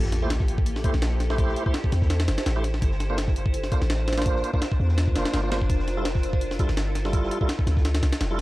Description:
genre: drum and bass, jungle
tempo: 167 BPM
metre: 4/4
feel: swing 54% on 16ths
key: A phrygian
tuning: A4 = 440 Hz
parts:
  - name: granular cloud pad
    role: sustained chords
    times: 0.0-8.4 s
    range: D4 to C5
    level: -32 LUFS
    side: equal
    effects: built-in reverb
  - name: warm 808-style bass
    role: bass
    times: 0.0-8.4 s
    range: F1 to E2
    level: -25 LUFS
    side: equal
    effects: none
  - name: crunchy breakbeat drum kit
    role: drums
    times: 0.0-8.4 s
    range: hi-hat, shaker, snare drum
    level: -45 LUFS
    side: equal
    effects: none
  - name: sub drop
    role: sound effects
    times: 0.1-1.4 s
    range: none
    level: -36 LUFS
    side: equal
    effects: none
  - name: breakbeat sampler-style drum kit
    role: drums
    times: 0.1-8.4 s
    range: hi-hat, kick drum, snare drum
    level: -25 LUFS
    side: equal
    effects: studio reverb
  - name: tonewheel organ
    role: stabs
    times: 0.2-8.4 s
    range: G3 to C5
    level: -32 LUFS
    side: right 2 dB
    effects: chorus vibrato, fast rotary speaker, vintage 12-bit sampler grit, dub echo
room: studio reverb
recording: dry, gritty hardware recording, cassette tape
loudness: -22 LUFS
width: side -18 dB against mid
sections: 0.0-8.4 A section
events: impact 0.0-1.4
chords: 0.0 Am7; 2.8 C9sus4/G; 5.7 Fmaj9

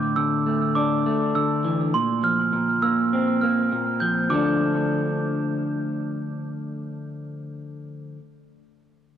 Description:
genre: rock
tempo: 101 BPM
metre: 4/4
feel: straight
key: D minor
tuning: A4 = 440 Hz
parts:
  - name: electric guitar through a small old amp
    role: arpeggios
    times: 0.0-8.2 s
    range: A2 to D4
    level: -23 LUFS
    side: left 1 dB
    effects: analog delay
  - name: glockenspiel with rubber mallets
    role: arpeggios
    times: 0.0-4.6 s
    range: C6 to G6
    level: -25 LUFS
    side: right 4 dB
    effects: analog delay
room: moderate huge ambient reverb, RT60 4.3 s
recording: dark, warm production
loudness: -21 LUFS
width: side -9 dB against mid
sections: 0.0-4.3 A section; 4.3-6.7 B section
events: none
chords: 0.0 Asus4; 1.9 Bbsus2; 4.3 Dm

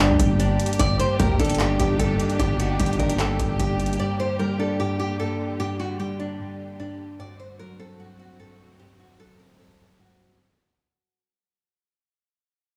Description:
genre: hip hop, trap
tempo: 150 BPM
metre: 4/4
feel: half-time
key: G harmonic minor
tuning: A4 = 440 Hz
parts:
  - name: nylon-string guitar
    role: melody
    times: 0.0-10.4 s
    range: D4 to D5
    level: -31 LUFS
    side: equal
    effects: none
  - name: soft electric-piano-like synth keys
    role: accompaniment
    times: 0.0-10.4 s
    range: G2 to D4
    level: -28 LUFS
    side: equal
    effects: chorus
  - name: warm symphonic string section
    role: sustained chords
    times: 0.0-10.4 s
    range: G2 to G4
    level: -33 LUFS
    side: equal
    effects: none
  - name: distorted 808-style bass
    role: bass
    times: 0.0-4.0 s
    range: G1 to D2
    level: -28 LUFS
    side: equal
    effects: distortion
  - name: booming analog drum machine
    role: drums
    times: 0.0-4.0 s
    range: handclaps, hi-hat, kick drum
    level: -28 LUFS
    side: equal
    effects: none
room: digital ambience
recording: studio reverb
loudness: -23 LUFS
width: mono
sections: 0.0-10.4 A section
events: fade-out 0.0-10.4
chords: 0.0 Gm; 0.8 Ebmaj7/G; 4.0 Gm; 7.2 D7/G

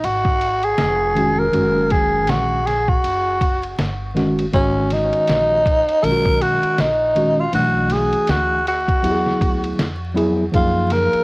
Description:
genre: hip hop, jazz-hop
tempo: 80 BPM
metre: 4/4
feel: swing 59% on 16ths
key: F# major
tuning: A4 = 440 Hz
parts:
  - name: growling tenor saxophone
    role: melody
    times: 0.0-11.2 s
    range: C#4 to A#4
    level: -18 LUFS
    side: equal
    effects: cassette tape, analog delay
  - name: upright bass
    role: bass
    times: 0.0-11.2 s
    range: E#1 to F#2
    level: -26 LUFS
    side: equal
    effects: none
  - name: lo-fi sampler-style drum kit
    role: drums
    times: 0.0-11.2 s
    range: hi-hat, kick drum, ride cymbal, snare drum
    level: -23 LUFS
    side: equal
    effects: cassette tape
  - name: mellow tine electric piano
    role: accompaniment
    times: 1.1-11.2 s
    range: D#3 to G#4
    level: -20 LUFS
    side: equal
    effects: medium stereo tremolo, cassette tape, plate reverb
room: moderate booth ambience, RT60 0.2 s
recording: home recording on cassette, vinyl crackle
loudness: -15 LUFS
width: side -26 dB against mid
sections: 0.0-4.5 A section; 4.5-11.2 B section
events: none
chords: 0.0 F#69; 4.5 G#m9; 7.5 Bm7; 9.0 E9; 10.5 F#maj7

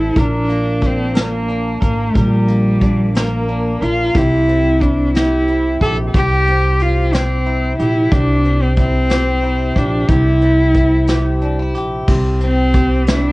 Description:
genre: six-eight pop ballad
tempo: 60 BPM (dotted quarters)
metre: 6/8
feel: straight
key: unclear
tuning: A4 = 435 Hz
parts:
  - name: warm cello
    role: melody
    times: 0.0-13.3 s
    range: G3 to A4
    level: -16 LUFS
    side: equal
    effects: cassette tape, tape echo
  - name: direct-recorded clean electric guitar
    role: accompaniment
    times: 0.0-13.3 s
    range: A2 to Bb4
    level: -22 LUFS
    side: equal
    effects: double-tracked left and right, cassette tape
  - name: upright bass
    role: bass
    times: 0.0-13.3 s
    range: A1 to C2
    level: -17 LUFS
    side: equal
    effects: none
  - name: soft brush drum kit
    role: drums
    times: 0.2-13.2 s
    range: crash cymbal, hi-hat, kick drum, snare drum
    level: -17 LUFS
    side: equal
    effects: cassette tape
room: moderate booth ambience, RT60 0.2 s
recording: home recording on cassette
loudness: -13 LUFS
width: side -21 dB against mid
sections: 0.0-12.1 A section; 12.1-13.3 B section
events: none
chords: 0.2 Bb; 4.1 C

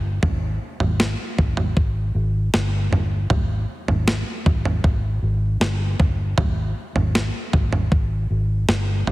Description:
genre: dream pop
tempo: 78 BPM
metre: 4/4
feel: straight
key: unclear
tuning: A4 = 442 Hz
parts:
  - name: vintage muted fingered electric bass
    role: bass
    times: 0.0-9.1 s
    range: G1 to Ab1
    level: -22 LUFS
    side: equal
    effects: none
  - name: clean 12-bit digital drum machine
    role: drums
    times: 0.2-9.1 s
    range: kick drum, snare drum, toms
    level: -21 LUFS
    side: equal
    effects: none
room: light reverb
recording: heavily compressed radio sound, multiband compression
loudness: -19 LUFS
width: side -18 dB against mid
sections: 0.0-9.1 A section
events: none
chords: none

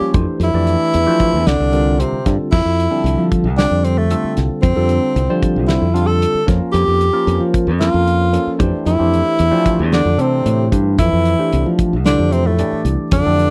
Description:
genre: electric jazz fusion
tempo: 113 BPM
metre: 4/4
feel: straight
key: F major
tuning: A4 = 441 Hz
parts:
  - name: breathy tenor saxophone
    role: melody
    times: 0.0-13.5 s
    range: A3 to A4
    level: -20 LUFS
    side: equal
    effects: slapback echo
  - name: warm bass clarinet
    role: second line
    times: 0.0-2.4, 9.9-13.5 s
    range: A2 to G3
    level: -26 LUFS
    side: equal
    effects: none
  - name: barky tine electric piano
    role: accompaniment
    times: 0.0-13.5 s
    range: D3 to D5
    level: -24 LUFS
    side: equal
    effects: phaser
  - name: modern bright fingered electric bass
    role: bass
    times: 0.0-13.5 s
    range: C2 to F3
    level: -19 LUFS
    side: equal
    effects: none
  - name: damped 70s drum kit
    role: drums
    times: 0.1-13.5 s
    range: crash cymbal, hi-hat, kick drum, snare drum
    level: -21 LUFS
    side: equal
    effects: none
room: little or no reverb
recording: dry, close 1970s-style studio recording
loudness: -15 LUFS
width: mono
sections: 0.0-2.5 A section; 2.5-13.5 A section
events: none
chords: 0.1 Am7/F; 1.5 C7sus4; 2.5 Fmaj9; 6.5 Bbm/F; 8.6 Am7; 11.0 Fmaj9

